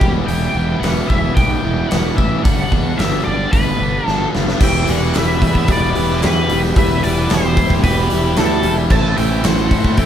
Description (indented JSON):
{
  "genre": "classic rock",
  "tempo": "111 BPM",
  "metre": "4/4",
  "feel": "straight",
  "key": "E minor",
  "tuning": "A4 = 439 Hz",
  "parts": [
    { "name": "octave-fuzz lead guitar", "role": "melody", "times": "0.0-10.1 s", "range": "G4 to A5", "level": "-22 LUFS", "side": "equal", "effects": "wah, distortion" },
    { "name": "overdriven electric guitar", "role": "riff", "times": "0.0-10.1 s", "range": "G2 to E4", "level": "-22 LUFS", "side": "equal", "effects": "none" },
    { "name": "fuzz fingered electric bass", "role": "bass", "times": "0.0-10.1 s", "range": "E1 to A2", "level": "-19 LUFS", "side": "right 1 dB", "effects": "overdrive" },
    { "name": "big rock drum kit", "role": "drums", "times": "0.0-10.1 s", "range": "crash cymbal, hi-hat, kick drum, snare drum", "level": "-17 LUFS", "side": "equal", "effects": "none" },
    { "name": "octave-fuzz lead guitar", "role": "second line", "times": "4.6-10.1 s", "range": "E4 to E5", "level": "-26 LUFS", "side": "right 1 dB", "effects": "distortion" },
    { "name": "dark upright piano", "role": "accompaniment", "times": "4.6-10.1 s", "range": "E4 to C5", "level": "-25 LUFS", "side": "left 4 dB", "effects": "none" },
    { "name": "bright tonewheel organ", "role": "sustained chords", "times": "4.6-10.1 s", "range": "G3 to E5", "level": "-29 LUFS", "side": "left 1 dB", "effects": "none" },
    { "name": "group handclap", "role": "percussion", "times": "5.1-9.6 s", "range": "none", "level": "-33 LUFS", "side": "right 4 dB", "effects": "none" }
  ],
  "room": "light reverb",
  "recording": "band playing live in one room",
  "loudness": "-13 LUFS",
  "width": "side -10 dB against mid",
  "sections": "0.0-4.6 A section; 4.6-10.1 B section",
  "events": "drum fill 4.1-4.6",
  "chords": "0.0 Em; 2.4 G; 4.6 Em; 8.9 Am"
}